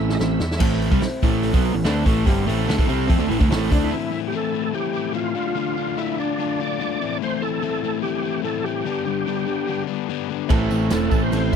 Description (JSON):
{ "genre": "classic rock", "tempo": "146 BPM", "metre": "4/4", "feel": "straight", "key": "A minor", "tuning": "A4 = 440 Hz", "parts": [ { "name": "overdriven tonewheel organ", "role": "melody", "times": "0.0-0.6, 3.7-11.6 s", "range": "D4 to E5", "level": "-27 LUFS", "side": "right 3 dB", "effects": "slow rotary speaker, chorus vibrato, tape echo" }, { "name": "dark grand piano", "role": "accompaniment", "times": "0.0-3.8, 10.5-11.6 s", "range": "C4 to C5", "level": "-33 LUFS", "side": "left 7 dB", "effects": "none" }, { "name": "picked twelve-string acoustic guitar", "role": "accompaniment", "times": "0.0-3.9, 10.5-11.6 s", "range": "A2 to A4", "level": "-33 LUFS", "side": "right 4 dB", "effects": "none" }, { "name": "overdriven electric guitar", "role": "riff", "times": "0.0-11.6 s", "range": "G2 to F4", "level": "-25 LUFS", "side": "left 15 dB", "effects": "none" }, { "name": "overdriven electric guitar", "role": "riff", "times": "0.0-3.9, 10.5-11.6 s", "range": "G2 to D4", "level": "-25 LUFS", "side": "right 14 dB", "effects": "none" }, { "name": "fuzz picked electric bass", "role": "bass", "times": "0.0-3.9, 10.5-11.6 s", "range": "E1 to F2", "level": "-24 LUFS", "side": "right 1 dB", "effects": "overdrive" }, { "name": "vintage drum kit", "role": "drums", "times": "0.1-3.8, 10.5-11.6 s", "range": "crash cymbal, hi-hat, kick drum, snare drum", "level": "-21 LUFS", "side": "right 1 dB", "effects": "none" }, { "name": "raw garage guitar", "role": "riff", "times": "0.6-3.9, 10.5-11.6 s", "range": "G2 to D4", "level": "-27 LUFS", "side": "right 1 dB", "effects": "overdrive, spring reverb" }, { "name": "tambourine", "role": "percussion", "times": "10.5-11.6 s", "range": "none", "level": "-44 LUFS", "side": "right 17 dB", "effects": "none" } ], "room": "little or no reverb", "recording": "dry, close 1970s-style studio recording", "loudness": "-19 LUFS", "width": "side -7 dB against mid", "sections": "0.6-3.9 A section; 3.9-11.6 B section", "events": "drum fill 0.0-0.6", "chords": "0.0 Am; 5.4 Dm; 7.0 Am; 8.9 G; 10.5 Am" }